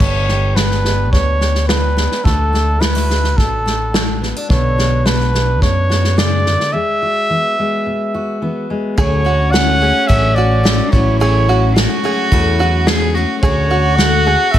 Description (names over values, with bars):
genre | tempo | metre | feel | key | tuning
indie folk with a building arrangement | 107 BPM | 4/4 | straight | unclear | A4 = 438 Hz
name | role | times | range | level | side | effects
warm trumpet | melody | 0.0-14.6 s | A4 to F#5 | -18 LUFS | right 1 dB | analog delay
fingerpicked steel-string acoustic guitar | accompaniment | 0.0-9.0 s | E2 to G4 | -23 LUFS | left 2 dB | none
picked electric bass | bass | 0.0-14.6 s | G1 to F#2 | -16 LUFS | equal | none
unplugged drum kit | drums | 0.0-14.6 s | crash cymbal, kick drum, snare drum | -17 LUFS | equal | none
warm cello | second line | 9.0-14.6 s | C#4 to G#4 | -19 LUFS | right 2 dB | none
picked plugged-in steel-string acoustic guitar | accompaniment | 9.0-14.6 s | A2 to A4 | -21 LUFS | left 5 dB | none
open-back banjo | arpeggios | 9.0-14.6 s | F#4 to G#4 | -22 LUFS | right 4 dB | analog delay
room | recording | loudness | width
light reverb, small room ambience | none | -12 LUFS | side -11 dB against mid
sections
0.0-9.0 A section; 9.0-14.6 B section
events
break 6.7-9.0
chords
0.0 G; 2.3 D; 4.5 Bm; 6.7 Eadd9; 9.0 Dmaj7; 10.9 A6; 13.4 Dmaj7